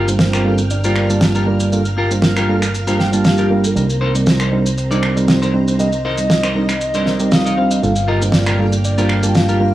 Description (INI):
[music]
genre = nu-disco, nu disco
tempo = 118 BPM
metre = 4/4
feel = swing 53% on 16ths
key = G minor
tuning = A4 = 439 Hz
[part]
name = string machine, full ensemble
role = sustained chords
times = 0.0-9.7 s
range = Bb3 to F6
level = -29 LUFS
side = right 1 dB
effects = ensemble chorus
[part]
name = clean electric guitar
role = riff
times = 0.0-9.6 s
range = Eb4 to G5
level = -23 LUFS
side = left 3 dB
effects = analog chorus, low-pass filter
[part]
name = fingered electric bass with an envelope filter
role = bass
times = 0.0-9.7 s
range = G1 to C2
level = -20 LUFS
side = right 1 dB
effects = none
[part]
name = reed electric piano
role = accompaniment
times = 0.1-9.7 s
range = G3 to A5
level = -18 LUFS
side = right 2 dB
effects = none
[part]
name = shaker, snare drum and finger snaps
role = drums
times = 0.1-9.6 s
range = none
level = -19 LUFS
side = equal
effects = none
[part]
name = soft octave-layered synth lead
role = melody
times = 0.2-9.7 s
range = G4 to G5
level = -23 LUFS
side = equal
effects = chorus, cassette tape, tape echo
[sound]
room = light reverb, small room ambience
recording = dry, gritty hardware recording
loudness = -13 LUFS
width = side -14 dB against mid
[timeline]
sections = 0.0-9.7 A section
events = clean electric guitar fill 2.7-3.8, 7.1-7.8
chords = 0.0 Gm7; 3.8 Cm7; 7.8 Gm7